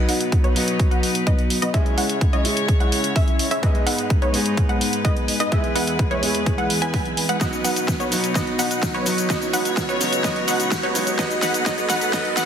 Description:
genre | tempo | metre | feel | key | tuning
EDM, festival progressive house | 127 BPM | 4/4 | straight | B major | A4 = 438 Hz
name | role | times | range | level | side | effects
warm grand piano | accompaniment | 0.0-12.5 s | F#3 to G#4 | -26 LUFS | right 2 dB | sidechain pumping, tape echo
rich chamber string section | sustained chords | 0.0-12.5 s | E2 to C#5 | -28 LUFS | left 3 dB | sidechain pumping
wide unison pluck | arpeggios | 0.0-12.5 s | C#5 to G#5 | -27 LUFS | equal | sidechain pumping, tape echo
supersaw stab | riff | 0.0-12.5 s | F#3 to G#5 | -26 LUFS | equal | sidechain pumping, low-pass filter, tape echo
riser | sound effects | 0.0-12.5 s | none | -35 LUFS | equal | none
big-room dance drum kit | drums | 0.1-12.5 s | hi-hat, shaker, snare drum | -25 LUFS | equal | overdrive
electronic kick drum | drums | 0.3-12.2 s | none | -21 LUFS | equal | overdrive
room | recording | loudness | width
moderate lush hall reverb, RT60 1.6 s, digital ambience | dense, heavily limited modern master, high-pass filter | -18 LUFS | side -8 dB against mid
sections
0.0-12.5 A section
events
build-up 0.0-12.5; filter sweep on supersaw synth 0.0-12.5; filter sweep on synth pluck 0.0-12.5; filter sweep 0.0-12.5; drum fill 7.4-12.5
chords
0.0 B; 1.7 C#m; 3.6 G#m; 5.5 E; 7.4 B; 9.3 C#m; 11.2 G#m

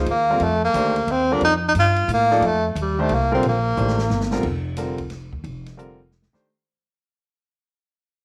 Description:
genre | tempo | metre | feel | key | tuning
modal jazz | 179 BPM | 3/4 | swing 65% on 8ths | unclear | A4 = 438 Hz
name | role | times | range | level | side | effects
clear grand piano | accompaniment | 0.0-6.4 s | D3 to D5 | -28 LUFS | equal | none
upright bass | bass | 0.0-6.4 s | F1 to A2 | -27 LUFS | equal | none
clear tenor saxophone | melody | 0.1-4.3 s | G3 to F4 | -22 LUFS | equal | slapback echo
open jazz drum kit | drums | 0.1-6.4 s | crash cymbal, hi-hat, kick drum, ride cymbal, snare drum | -38 LUFS | equal | none
room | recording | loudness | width
moderate plate reverb, RT60 1.0 s, small room ambience | none | -20 LUFS | mono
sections
0.0-4.4 A section; 4.4-6.5 B section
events
drum fill 3.8-4.4, 6.1-6.5; fade-out 4.4-6.5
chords
0.4 F9sus4; 4.4 Fsus4

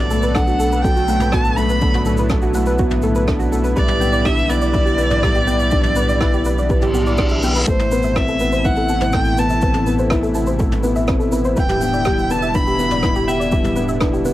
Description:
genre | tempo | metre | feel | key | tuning
piano and strings electronica | 123 BPM | 4/4 | straight | A dorian | A4 = 438 Hz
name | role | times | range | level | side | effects
rich violin | melody | 0.0-13.8 s | C5 to B5 | -21 LUFS | equal | cassette tape
lush unison pad | sustained chords | 0.0-14.3 s | B2 to A4 | -24 LUFS | equal | chorus, cassette tape
felt-muted upright piano | riff | 0.0-14.3 s | F#3 to E4 | -22 LUFS | left 2 dB | cassette tape, tape echo
warm sub bass | bass | 0.0-14.3 s | E1 to B1 | -22 LUFS | equal | sidechain pumping
soft round pluck | arpeggios | 0.1-14.3 s | F#4 to A5 | -24 LUFS | right 1 dB | chorus, sidechain pumping, cassette tape, tape echo
jazz brush drum kit | drums | 0.1-14.3 s | rim click, shaker, toms | -27 LUFS | equal | cassette tape
electronic kick drum | drums | 0.4-14.1 s | none | -20 LUFS | equal | overdrive, cassette tape
reverse cymbal | sound effects | 6.8-7.7 s | none | -22 LUFS | equal | none
room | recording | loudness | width
light reverb | home recording on cassette | -15 LUFS | side -15 dB against mid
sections
0.0-14.3 A section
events
reverse cymbal 6.8-7.7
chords
0.0 Bm7; 3.8 G6/B; 7.7 Amadd9; 11.6 Em7

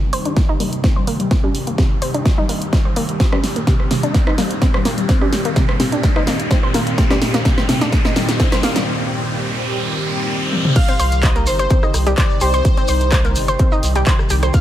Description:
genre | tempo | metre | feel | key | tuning
progressive house | 127 BPM | 4/4 | straight | C minor | A4 = 440 Hz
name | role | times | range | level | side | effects
lush unison pad | sustained chords | 0.0-14.6 s | Bb2 to G4 | -24 LUFS | equal | chorus, phaser, sidechain pumping
riser | sound effects | 0.0-10.8 s | none | -26 LUFS | equal | none
analog pluck | arpeggios | 0.1-14.5 s | C3 to C6 | -22 LUFS | equal | chorus, vintage 12-bit sampler grit, sidechain pumping, tape echo
big-room dance drum kit | drums | 0.1-14.6 s | crash cymbal, handclaps, hi-hat, rim click, snare drum, toms | -22 LUFS | equal | sidechain pumping on hats, sidechain pumping on toms, sidechain pumping on cymbals
electronic kick drum | drums | 0.4-14.6 s | none | -16 LUFS | equal | none
electronic congas and rim click | percussion | 0.6-8.8 s | none | -25 LUFS | equal | sidechain pumping on perc, sidechain pumping on snare
soft supersaw | melody | 10.8-14.6 s | C5 to F5 | -24 LUFS | equal | sidechain pumping, tape echo
soft round pluck | second line | 10.8-14.6 s | C6 to F6 | -29 LUFS | left 1 dB | lush chorus, sidechain pumping, tape echo
shekere | percussion | 10.8-14.6 s | none | -30 LUFS | left 1 dB | none
round analog bass | bass | 11.0-14.5 s | G1 to C2 | -18 LUFS | equal | sidechain pumping
room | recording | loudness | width
light reverb, digital ambience | none | -14 LUFS | side -12 dB against mid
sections
0.0-10.8 A section; 10.8-14.6 B section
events
build-up 0.0-10.8; drum fill 0.0-8.9, 10.5; riser 0.0-10.8; filter sweep on synth arpeggio sound 0.0-10.8; filter sweep on analog synth pad 0.0-10.8; break 8.9-10.8; drop 10.8-14.6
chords
0.0 Cm; 3.2 Eb6; 10.8 Cm

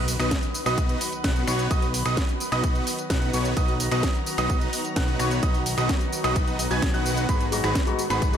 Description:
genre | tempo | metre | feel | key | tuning
EDM, festival progressive house | 129 BPM | 4/4 | straight | B major | A4 = 443 Hz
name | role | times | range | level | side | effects
lush unison pad | sustained chords | 0.0-8.4 s | D#3 to A#5 | -32 LUFS | equal | chorus, sidechain pumping
fat analog bass | bass | 0.0-8.4 s | G#1 to B1 | -28 LUFS | equal | sidechain pumping
impact | sound effects | 0.0-1.7 s | none | -36 LUFS | equal | none
house drum kit | drums | 0.1-8.4 s | finger snaps, hi-hat, snare drum, tambourine | -30 LUFS | equal | overdrive
warm concert grand piano | arpeggios | 0.2-8.4 s | B5 to G#6 | -31 LUFS | right 3 dB | sidechain pumping, ping-pong delay
supersaw chords | riff | 0.2-8.4 s | B3 to G#5 | -28 LUFS | equal | sidechain pumping, ping-pong delay
electronic kick drum | drums | 0.3-8.3 s | none | -25 LUFS | equal | overdrive
felt-muted upright piano | accompaniment | 7.5-8.4 s | G#2 to F#4 | -31 LUFS | left 7 dB | sidechain pumping, ping-pong delay
room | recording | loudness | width
light reverb, digital ambience | none | -22 LUFS | side -9 dB against mid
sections
0.0-8.4 A section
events
impact 0.0-1.7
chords
0.0 B; 7.3 G#m7

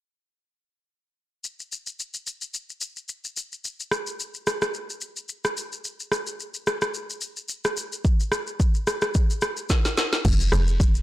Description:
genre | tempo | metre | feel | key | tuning
amapiano | 109 BPM | 4/4 | swing 55% on 16ths | unclear | A4 = 436 Hz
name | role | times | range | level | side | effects
afro-pop drum kit | drums | 1.4-11.0 s | crash cymbal, kick drum, rim click, shaker, snare drum | -24 LUFS | equal | none
deep log drum bass | bass | 10.2-11.0 s | F1 | -21 LUFS | equal | none
room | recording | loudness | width
light reverb | blown-out, overdriven recording, overdrive | -24 LUFS | side -15 dB against mid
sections
1.4-10.2 A section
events
drum fill 9.7-10.2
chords
none

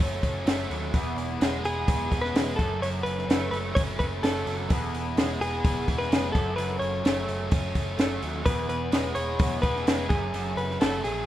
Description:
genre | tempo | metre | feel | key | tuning
indie rock | 128 BPM | 4/4 | straight | unclear | A4 = 435 Hz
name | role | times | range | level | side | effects
direct-recorded clean electric guitar | melody | 0.0-11.3 s | G#4 to C#5 | -31 LUFS | equal | spring reverb
ensemble organ-string | sustained chords | 0.0-11.3 s | A3 to E6 | -45 LUFS | left 1 dB | none
biting overdriven guitar | riff | 0.0-11.3 s | E2 to G#4 | -33 LUFS | right 6 dB | analog chorus
raw garage guitar | riff | 0.0-11.3 s | E3 to A4 | -34 LUFS | left 6 dB | overdrive
overdriven picked electric bass | bass | 0.0-11.2 s | E1 to D#2 | -34 LUFS | equal | none
compact cocktail drum kit | drums | 0.0-11.2 s | hi-hat, kick drum, snare drum | -26 LUFS | equal | none
room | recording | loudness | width
small room ambience | rough home demo mix | -24 LUFS | side -13 dB against mid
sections
0.0-11.3 A section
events
none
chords
0.0 F#madd9; 0.9 Eadd9; 2.6 F#madd9; 4.7 Eadd9; 6.3 F#madd9; 8.5 Eadd9; 10.1 F#madd9

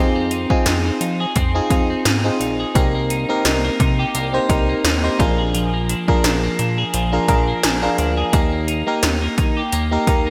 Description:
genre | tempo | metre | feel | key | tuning
1980s-style pop | 86 BPM | 4/4 | swing 55% on 16ths | unclear | A4 = 440 Hz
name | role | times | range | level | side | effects
FM electric piano | accompaniment | 0.0-10.3 s | Bb3 to Bb5 | -23 LUFS | equal | chorus
twelve-string electric guitar | riff | 0.0-10.3 s | F3 to Ab4 | -26 LUFS | equal | analog chorus, digital delay
chorused synth bass | bass | 0.0-10.3 s | Bb1 to F3 | -25 LUFS | equal | none
80s electronic pad drums | drums | 0.3-10.3 s | hi-hat, kick drum, snare drum | -22 LUFS | equal | overdrive, gated reverb
room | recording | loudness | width
moderate lush hall reverb, RT60 2.6 s | bright 1980s-style digital production | -18 LUFS | mono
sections
0.0-10.3 A section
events
FM electric piano fill 6.9-8.3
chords
0.0 Fm7; 2.8 Cm7; 5.2 Bb7; 8.3 Eb

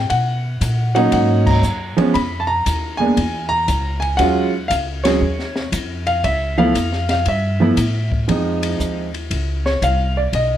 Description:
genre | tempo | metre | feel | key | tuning
jazz piano trio | 117 BPM | 4/4 | swing 67% on 8ths | unclear | A4 = 438 Hz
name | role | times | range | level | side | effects
warm concert grand piano | melody | 0.0-10.6 s | E#3 to Cb6 | -18 LUFS | right 1 dB | none
upright bass | bass | 0.0-10.6 s | Cb2 to B2 | -21 LUFS | equal | none
open jazz drum kit | drums | 0.1-10.5 s | crash cymbal, hi-hat, kick drum, ride cymbal, snare drum | -26 LUFS | left 3 dB | none
room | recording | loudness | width
light reverb | none | -16 LUFS | side -11 dB against mid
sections
0.0-8.3 A section; 8.3-10.6 B section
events
band accent 1.4, 5.0; grand piano solo 8.3-10.6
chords
0.1 Bmaj9; 2.1 Fm7b5; 3.2 C#m6; 4.2 D#m11; 6.2 C#aug; 8.3 Dbmaj7

